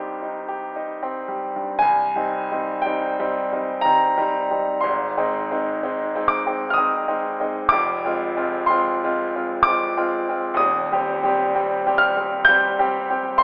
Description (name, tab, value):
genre	classical, romantic nocturne for solo piano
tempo	55-65 BPM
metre	3/4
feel	rubato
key	C minor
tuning	A4 = 440 Hz
part	clear grand piano	solo	0.0-13.4 s	Eb1 to G6	-21 LUFS	equal	none
room	wet recital hall reverb, RT60 1.4 s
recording	telephone sound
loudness	-21 LUFS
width	mono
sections	0.0-1.8 A section; 1.8-13.4 B section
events	none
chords	0.0 Cm; 4.8 Ab; 7.7 Fm; 10.6 Cm/Eb